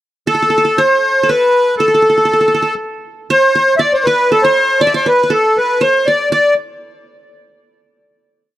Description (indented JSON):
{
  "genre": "Arabic maqam ensemble",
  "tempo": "119 BPM",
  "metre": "3/4",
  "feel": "straight",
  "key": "unclear",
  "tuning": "A4 = 438 Hz",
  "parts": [
    { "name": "accordion", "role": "melody", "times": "0.3-6.5 s", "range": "A4 to E5", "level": "-11 LUFS", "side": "left 1 dB", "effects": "light tremolo tuning" },
    { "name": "qanun", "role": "second line", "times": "0.3-6.5 s", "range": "A4 to E5", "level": "-18 LUFS", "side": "right 3 dB", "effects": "none" }
  ],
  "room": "small room ambience",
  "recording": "dry, close 1970s-style studio recording",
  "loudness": "-10 LUFS",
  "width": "side -14 dB against mid",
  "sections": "0.3-6.3 A section; 6.3-7.8 final note",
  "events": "none",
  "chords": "none"
}